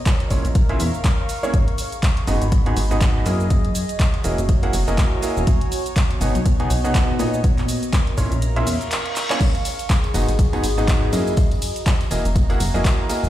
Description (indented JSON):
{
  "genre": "piano house",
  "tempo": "122 BPM",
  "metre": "4/4",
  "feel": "swing 58% on 16ths",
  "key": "unclear",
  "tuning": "A4 = 440 Hz",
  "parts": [
    { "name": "warbly tape-like pad", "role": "texture", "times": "0.0-13.3 s", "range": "B3 to C#6", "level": "-28 LUFS", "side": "equal", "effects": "chorus, built-in reverb, phaser, sidechain pumping" },
    { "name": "electronic kick drum", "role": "drums", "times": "0.1-13.0 s", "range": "none", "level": "-18 LUFS", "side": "equal", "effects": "none" },
    { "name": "punchy analog drum machine", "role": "drums", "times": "0.1-13.3 s", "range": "crash cymbal, handclaps, hi-hat, ride cymbal, shaker", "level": "-28 LUFS", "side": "equal", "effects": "none" },
    { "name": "bright upright piano", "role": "riff", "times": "0.3-13.3 s", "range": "G#2 to G#5", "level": "-25 LUFS", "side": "right 1 dB", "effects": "sidechain pumping, digital delay" },
    { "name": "plucky analog bass", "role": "bass", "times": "0.3-13.3 s", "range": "E1 to A#2", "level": "-22 LUFS", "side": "equal", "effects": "sidechain pumping" },
    { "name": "reverse cymbal", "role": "sound effects", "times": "8.7-9.4 s", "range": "none", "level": "-31 LUFS", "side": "left 2 dB", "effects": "none" },
    { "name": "tambourine", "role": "percussion", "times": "9.4-13.3 s", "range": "none", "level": "-38 LUFS", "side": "left 8 dB", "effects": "none" }
  ],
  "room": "little or no reverb",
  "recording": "played on a big sound system in a bare room, stone room reverb",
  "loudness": "-17 LUFS",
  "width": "side -13 dB against mid",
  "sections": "0.0-13.3 A section",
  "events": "kick drops out 8.4-9.4; reverse cymbal 8.7-9.4; drum fill 9.2",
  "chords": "0.0 A#m7b5; 1.5 G#m7; 3.3 F#13; 5.5 B6; 7.4 A#m7b5; 9.4 G#m7; 11.1 F#13",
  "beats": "0.06 0.55 1.04 | 1.54 2.03 2.52 3.01 | 3.50 4.00 4.49 4.98 | 5.47 5.96 6.45 6.95 | 7.44 7.93 8.42 8.91 | 9.40 9.90 10.39 10.88 | 11.37 11.86 12.36 12.85"
}